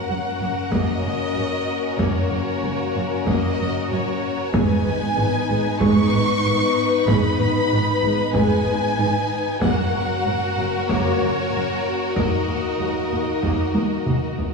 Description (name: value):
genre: cinematic, epic orchestral film score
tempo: 94 BPM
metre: 4/4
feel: straight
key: G# minor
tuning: A4 = 442 Hz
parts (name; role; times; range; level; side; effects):
- warm studio violin section; melody; 0.0-14.4 s; C#5 to C#6; -26 LUFS; equal; none
- warm symphonic violin section; second line; 0.0-14.5 s; D#4 to B4; -26 LUFS; left 4 dB; none
- dark symphonic viola section; accompaniment; 0.0-14.5 s; D#3 to D#4; -27 LUFS; right 1 dB; none
- dark French horn section; sustained chords; 0.0-14.4 s; A#3 to F#4; -27 LUFS; left 4 dB; none
- rich symphonic cello section; bass; 0.1-14.2 s; D#2 to G#2; -28 LUFS; right 2 dB; none
- warm symphonic double bass section; bass; 0.1-14.2 s; F#1 to D#2; -28 LUFS; right 3 dB; none
- solo taiko drums; drums; 0.7-14.5 s; none; -24 LUFS; equal; none
room: wet scoring stage reverb, RT60 1.7 s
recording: heard from further back in the room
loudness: -18 LUFS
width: side -4 dB against mid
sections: 0.0-14.5 A section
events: drum fill 13.8-14.5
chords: 0.0 F#; 4.5 G#m; 9.6 F#; 12.2 D#m